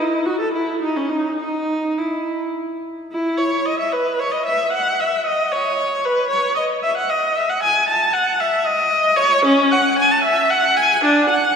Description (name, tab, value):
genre	classical, baroque-style suite movement for unaccompanied viola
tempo	102-117 BPM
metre	3/4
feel	rubato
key	E major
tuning	A4 = 442 Hz
part	rich viola	solo	0.0-11.6 s	C#4 to A5	-16 LUFS	equal	none
room	wet church reverb, RT60 2.7 s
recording	none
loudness	-16 LUFS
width	side -6 dB against mid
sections	0.0-3.1 A section; 3.1-11.6 B section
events	none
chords	none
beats	0.25 0.80 | 1.37 1.96 2.53 | 3.11 3.65 4.19 | 4.72 5.25 5.78 | 6.31 6.83 7.36 | 7.88 8.39 8.91 | 9.45 9.98 10.50 | 11.02